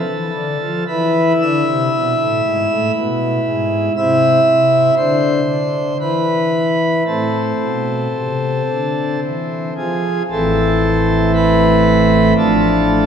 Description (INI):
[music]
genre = classical, chorale-style piece for pipe organ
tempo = 58 BPM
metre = 3/4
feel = rubato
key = A minor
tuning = A4 = 439 Hz
[part]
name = pipe organ, principal chorus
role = solo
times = 0.0-13.1 s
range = A1 to E5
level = -13 LUFS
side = equal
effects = none
[sound]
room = wet church reverb, RT60 3.4 s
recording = none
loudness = -13 LUFS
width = side -7 dB against mid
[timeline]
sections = 0.0-10.3 A section; 10.3-13.1 A section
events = none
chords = 0.0 Dm; 0.9 E; 4.0 C; 5.0 N.C.; 7.1 Am; 12.4 Dm/A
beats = | 0.88 1.93 2.95 | 3.97 4.97 6.01 | 7.07 8.16 9.24 | 10.31 11.35 12.37